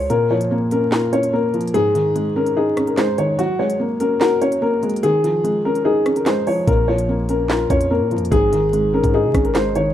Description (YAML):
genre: hip hop, drill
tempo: 146 BPM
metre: 4/4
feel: half-time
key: Bb minor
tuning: A4 = 440 Hz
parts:
  - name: dark grand piano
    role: melody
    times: 0.0-9.9 s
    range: Gb4 to Db5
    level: -18 LUFS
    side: left 2 dB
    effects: none
  - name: long sustained 808-style bass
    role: bass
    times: 0.0-0.1, 6.7-9.9 s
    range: Ab1 to C3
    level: -24 LUFS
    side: equal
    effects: none
  - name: felt-muted upright piano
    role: accompaniment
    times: 0.1-9.9 s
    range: Ab2 to Gb4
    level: -20 LUFS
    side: equal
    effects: none
  - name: drill drum kit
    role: drums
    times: 0.1-9.9 s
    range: handclaps, hi-hat, kick drum, rim click, snare drum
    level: -22 LUFS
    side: equal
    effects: none
room: light reverb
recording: rough home demo mix, vinyl crackle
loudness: -16 LUFS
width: side -11 dB against mid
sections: 0.0-9.9 A section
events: kick muted 0.1-6.7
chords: 0.1 Bbm; 1.7 Absus4; 3.4 Gbadd9; 5.0 Dbadd9; 6.7 Bbm; 8.3 Absus4